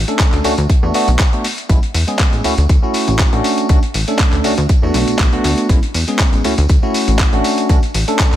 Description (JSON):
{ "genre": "filtered disco house", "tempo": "120 BPM", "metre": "4/4", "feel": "swing 54% on 16ths", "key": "A major", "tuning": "A4 = 440 Hz", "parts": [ { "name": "plucky analog bass", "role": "bass", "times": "0.0-8.4 s", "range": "A1 to E2", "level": "-17 LUFS", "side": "equal", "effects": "tube saturation, sidechain pumping, low-pass filter" }, { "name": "bell-like tine electric piano", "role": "accompaniment", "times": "0.1-8.4 s", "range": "G#3 to A4", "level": "-18 LUFS", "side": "equal", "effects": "phaser, sidechain pumping, low-pass filter" }, { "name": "dusty soul sampler-style drum kit", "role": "drums", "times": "0.1-8.4 s", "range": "handclaps, hi-hat", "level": "-20 LUFS", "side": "left 1 dB", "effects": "overdrive, sidechain pumping on hats" }, { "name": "tambourine", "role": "percussion", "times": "0.1-8.4 s", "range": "none", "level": "-31 LUFS", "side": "right 1 dB", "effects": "sidechain pumping on perc, low-pass filter on perc" }, { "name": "electronic kick drum", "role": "drums", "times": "0.2-8.3 s", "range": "none", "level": "-13 LUFS", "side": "equal", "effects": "none" } ], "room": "little or no reverb", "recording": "none", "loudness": "-12 LUFS", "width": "side -12 dB against mid", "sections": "0.0-8.4 A section", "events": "none", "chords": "0.0 Aadd11; 0.7 E9sus4 (rootless); 1.7 Amaj7; 2.4 Dmaj9; 3.4 Aadd11; 4.7 E9sus4 (rootless); 5.7 Amaj7; 6.4 Dmaj9; 7.4 Aadd11" }